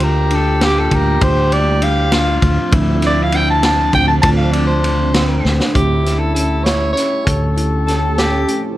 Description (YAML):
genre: progressive instrumental, band music in an uneven meter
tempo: 198 BPM (eighths)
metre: 5/8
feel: straight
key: unclear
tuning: A4 = 440 Hz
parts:
  - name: growling soprano saxophone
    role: melody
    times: 0.0-8.6 s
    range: G4 to A5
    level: -18 LUFS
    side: right 1 dB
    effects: tape echo
  - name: breathy flugelhorn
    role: second line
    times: 0.0-8.8 s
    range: C4 to A4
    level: -23 LUFS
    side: left 4 dB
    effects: none
  - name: kalimba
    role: arpeggios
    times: 0.0-8.6 s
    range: F3 to F4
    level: -24 LUFS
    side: left 4 dB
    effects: tape echo
  - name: fretless electric bass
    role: bass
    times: 0.0-8.4 s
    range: D2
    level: -17 LUFS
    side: equal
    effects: analog chorus
  - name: vintage drum kit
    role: drums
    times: 0.0-8.6 s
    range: hi-hat, kick drum, ride cymbal, snare drum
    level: -19 LUFS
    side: equal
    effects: none
  - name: dark analog pad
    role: accompaniment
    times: 0.6-8.8 s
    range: D3 to A4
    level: -23 LUFS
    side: right 4 dB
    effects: chorus
room: little or no reverb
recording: none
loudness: -12 LUFS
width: side -15 dB against mid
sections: 0.0-5.8 A section; 5.8-8.8 B section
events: soprano saxophone solo 0.0-5.8; drum fill 5.5-5.8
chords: 0.0 Gm7/D; 2.7 Dm7; 5.8 A7/D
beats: 0.01 0.31 0.61 0.91 | 1.22 1.52 1.82 2.12 2.42 | 2.73 3.03 3.33 3.63 3.94 | 4.24 4.54 4.84 5.15 5.45 | 5.75 6.05 6.36 6.66 6.96 | 7.27 7.57 7.87 8.18 8.48